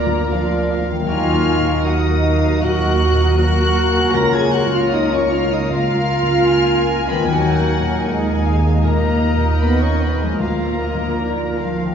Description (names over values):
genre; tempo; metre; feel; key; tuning
cinematic; 77 BPM; 4/4; rubato; Eb minor; A4 = 442 Hz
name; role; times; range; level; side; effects
rich studio violin section; melody; 0.0-11.9 s; F5 to Bb6; -26 LUFS; left 4 dB; none
clear oboe; second line; 0.0-11.9 s; Bb4; -28 LUFS; left 3 dB; none
dark studio violin section; second line; 0.0-11.9 s; Bb4 to Ab5; -26 LUFS; left 1 dB; none
hollow flute section; second line; 0.0-11.9 s; F4 to Bb5; -28 LUFS; equal; none
warm clarinet; second line; 0.0-11.9 s; Eb4 to Gb4; -28 LUFS; right 2 dB; none
dark symphonic viola section; accompaniment; 0.0-11.9 s; Gb3 to F4; -25 LUFS; equal; none
felt-muted upright piano; accompaniment; 0.0-11.9 s; Db2 to Bb4; -24 LUFS; left 1 dB; none
warm French horn section; sustained chords; 0.0-11.9 s; F3 to Bb4; -23 LUFS; left 2 dB; none
concert harp; arpeggios; 0.0-11.9 s; Db3 to Bb4; -28 LUFS; left 5 dB; none
dark studio double bass section; bass; 0.0-11.9 s; Db2 to Eb2; -21 LUFS; right 2 dB; none
warm studio cello section; bass; 0.0-11.9 s; F3 to Bb4; -25 LUFS; right 4 dB; none
room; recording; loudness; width
wet scoring stage reverb, RT60 1.6 s; heard from further back in the room, nothing above 7.7 kHz; -15 LUFS; side -7 dB against mid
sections
0.0-11.9 A section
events
none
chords
0.0 Bb/D; 1.1 Ebm; 4.1 Bbm/Db; 7.3 Ebm; 10.4 Bb/D